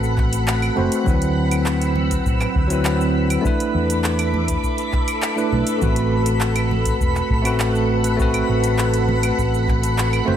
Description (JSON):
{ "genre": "sunset chillout", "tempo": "101 BPM", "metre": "4/4", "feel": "straight", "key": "A dorian", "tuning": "A4 = 441 Hz", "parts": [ { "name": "bell-like tine electric piano", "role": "accompaniment", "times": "0.0-10.4 s", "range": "F#3 to C5", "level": "-22 LUFS", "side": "equal", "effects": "auto-pan, ping-pong delay" }, { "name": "soft string machine", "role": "sustained chords", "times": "0.0-10.4 s", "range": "C4 to E6", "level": "-26 LUFS", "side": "equal", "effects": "phaser, ensemble chorus" }, { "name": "mellow fretless electric bass", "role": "bass", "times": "0.0-10.4 s", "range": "E1 to E2", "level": "-21 LUFS", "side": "equal", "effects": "analog chorus" }, { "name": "smooth R&B drum kit", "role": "drums", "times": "0.0-10.2 s", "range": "claves, handclaps, hi-hat, shaker", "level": "-27 LUFS", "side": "right 2 dB", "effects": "overdrive" }, { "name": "twinkling granular texture", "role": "texture", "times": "0.0-10.4 s", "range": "B4 to B5", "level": "-29 LUFS", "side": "right 2 dB", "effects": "built-in reverb" }, { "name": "electronic kick drum", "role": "drums", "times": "0.2-9.8 s", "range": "none", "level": "-22 LUFS", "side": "equal", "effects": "none" }, { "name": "congas", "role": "percussion", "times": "0.8-10.4 s", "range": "none", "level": "-29 LUFS", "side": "right 3 dB", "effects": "none" } ], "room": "light reverb, digital ambience", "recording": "none", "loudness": "-17 LUFS", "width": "side -9 dB against mid", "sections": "0.0-10.4 A section", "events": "none", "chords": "0.0 Am69; 1.1 D13; 3.4 E7sus4; 5.8 Am69", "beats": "0.47 | 1.06 1.66 2.25 2.85 | 3.44 4.04 4.63 5.22 | 5.82 6.41 7.00 7.60 | 8.19 8.79 9.38 9.98" }